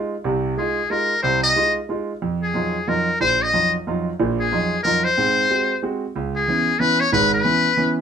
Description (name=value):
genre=jazz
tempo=183 BPM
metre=3/4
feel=swing 63% on 8ths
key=unclear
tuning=A4 = 438 Hz
part: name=warm concert grand piano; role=accompaniment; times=0.0-8.0 s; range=G#1 to Gb4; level=-22 LUFS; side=right 3 dB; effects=none
part: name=trumpet with metal mute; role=melody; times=0.6-7.9 s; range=Ab4 to Eb5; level=-18 LUFS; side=left 3 dB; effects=none
room=moderate club ambience, RT60 0.5 s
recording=minimal, uncompressed stereo recording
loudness=-18 LUFS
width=side -7 dB against mid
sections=0.0-6.1 A section; 6.1-8.0 B section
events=none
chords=0.0 Fm7; 2.2 Ebmadd9; 5.2 Ab7; 6.1 C#m7